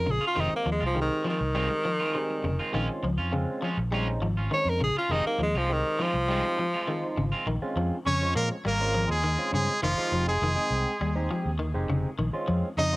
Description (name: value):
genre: afrobeat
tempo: 102 BPM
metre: 4/4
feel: straight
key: Bb dorian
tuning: A4 = 439 Hz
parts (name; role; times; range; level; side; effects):
- edgy tenor saxophone; melody; 0.0-7.4 s; Eb3 to Db5; -27 LUFS; equal; cassette tape
- barky tine electric piano; accompaniment; 0.0-13.0 s; G3 to Ab5; -34 LUFS; right 1 dB; phaser, cassette tape
- fingered electric bass; bass; 0.0-13.0 s; F1 to Bb2; -29 LUFS; equal; none
- electric guitar at the edge of break-up; arpeggios; 0.1-12.9 s; Db3 to G3; -32 LUFS; left 2 dB; spring reverb, cassette tape
- electric guitar at the edge of break-up; stabs; 0.1-7.5 s; Eb3 to F4; -34 LUFS; right 3 dB; cassette tape
- brilliant trumpet; melody; 8.1-13.0 s; F4 to Eb5; -28 LUFS; equal; cassette tape, tape echo
- raspy tenor saxophone; second line; 8.1-13.0 s; F3 to Eb4; -32 LUFS; right 2 dB; cassette tape
room: light reverb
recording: home recording on cassette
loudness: -25 LUFS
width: side -21 dB against mid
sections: 0.0-7.5 A section; 7.5-13.0 B section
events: tenor saxophone solo 0.0-7.5; tine electric piano fill 1.9-2.7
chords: 0.4 Fm7; 2.7 Bbm7; 5.1 Fm7; 7.5 Bbm7; 9.8 Fm7; 12.2 Bbm7